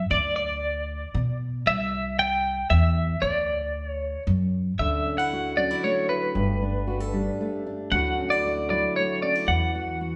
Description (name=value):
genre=indie folk with a building arrangement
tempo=115 BPM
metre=3/4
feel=straight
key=D major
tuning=A4 = 440 Hz
part: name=twelve-string electric guitar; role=melody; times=0.0-10.2 s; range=B4 to G5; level=-27 LUFS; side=equal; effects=tremolo
part: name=upright bass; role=bass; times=0.0-10.2 s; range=G1 to B2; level=-29 LUFS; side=equal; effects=none
part: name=fingerpicked steel-string acoustic guitar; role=accompaniment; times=4.8-10.2 s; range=G2 to A4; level=-31 LUFS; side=equal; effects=none
room=wet large studio reverb, RT60 1.3 s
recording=band playing live in one room, nothing above 10.5 kHz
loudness=-25 LUFS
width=mono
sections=0.0-4.8 A section; 4.8-10.2 B section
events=none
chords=0.1 Bm/D; 1.7 C; 3.2 D; 4.8 Dadd9; 6.4 Gadd9; 7.9 Dadd9; 9.5 Esus2